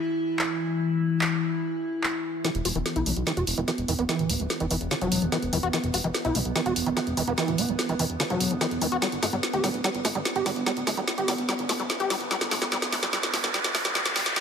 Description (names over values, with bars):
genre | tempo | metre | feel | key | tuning
psychedelic trance | 146 BPM | 4/4 | straight | E minor | A4 = 440 Hz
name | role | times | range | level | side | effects
evolving wavetable pad | sustained chords | 0.0-14.4 s | E3 to E4 | -30 LUFS | equal | phaser, built-in reverb
drum and bass drum kit | drums | 0.4-14.4 s | handclaps, hi-hat, snare drum | -28 LUFS | equal | none
overdriven acid bass | riff | 2.4-14.4 s | D3 to G4 | -29 LUFS | moving between left 6 dB and right 6 dB | distortion, auto-pan, dub echo
fat analog bass | bass | 2.5-14.3 s | D1 to B1 | -32 LUFS | equal | none
riser | sound effects | 10.8-14.4 s | none | -33 LUFS | right 1 dB | none
room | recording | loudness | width
moderate lush hall reverb, RT60 2.1 s | high-pass filter | -24 LUFS | side -7 dB against mid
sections
0.0-2.4 A section; 2.4-14.4 B section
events
build-up 2.4-14.4; drum fill 2.4-14.4; filter sweep on acid bass 2.4-14.4; filter sweep on ambient pad 2.4-14.4; filter sweep 2.4-14.4; riser 10.8-14.4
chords
0.0 N.C.; 2.4 E5; 9.0 G5